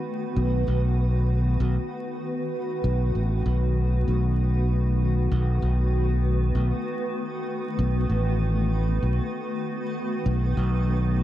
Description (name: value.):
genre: ambient dub.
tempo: 97 BPM.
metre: 4/4.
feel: swing 59% on 16ths.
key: B mixolydian.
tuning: A4 = 440 Hz.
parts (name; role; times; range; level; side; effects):
granular cloud pad; sustained chords; 0.0-11.2 s; D#3 to B4; -29 LUFS; equal; built-in reverb.
modern bright fingered electric bass; bass; 0.4-11.2 s; A1 to B1; -22 LUFS; equal; none.
room: digital ambience.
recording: dark, warm production, vinyl crackle.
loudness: -22 LUFS.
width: side -13 dB against mid.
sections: 0.0-11.2 A section.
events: none.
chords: 0.0 B7.